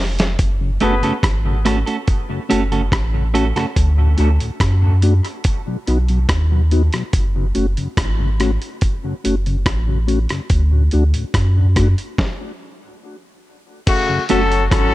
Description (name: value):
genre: dub reggae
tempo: 71 BPM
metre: 4/4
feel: straight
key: F# minor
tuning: A4 = 441 Hz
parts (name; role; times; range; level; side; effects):
- warm sub bass; bass; 0.0-14.9 s; E#1 to F#2; -16 LUFS; equal; none
- dusty soul sampler-style drum kit; drums; 0.2-14.9 s; crash cymbal, hi-hat, kick drum, rim click, snare drum; -20 LUFS; equal; none
- mellow tonewheel organ; accompaniment; 0.6-14.4 s; D2 to F#4; -23 LUFS; left 2 dB; slow rotary speaker, dub echo
- warm horn section; second line; 0.8-1.2, 13.9-14.9 s; C#3 to B4; -20 LUFS; left 3 dB; dub echo
- clean electric guitar; accompaniment; 0.8-3.7, 14.3-14.4 s; A3 to A4; -23 LUFS; right 4 dB; spring reverb, dub echo
room: digital ambience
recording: echo-heavy mix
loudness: -15 LUFS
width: side -17 dB against mid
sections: 0.4-13.9 A section; 13.9-14.9 B section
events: break 0.0-0.4; drum fill 0.0-0.4; stop 12.2-13.9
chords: 0.4 F#m; 3.8 D; 5.4 B; 7.1 F#m; 10.5 D; 12.2 N.C.; 13.9 F#m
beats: | 0.39 1.24 2.08 2.92 | 3.76 4.61 5.45 6.29 | 7.13 7.98 8.82 9.66 | 10.51 11.35 12.19 13.03 | 13.88 14.72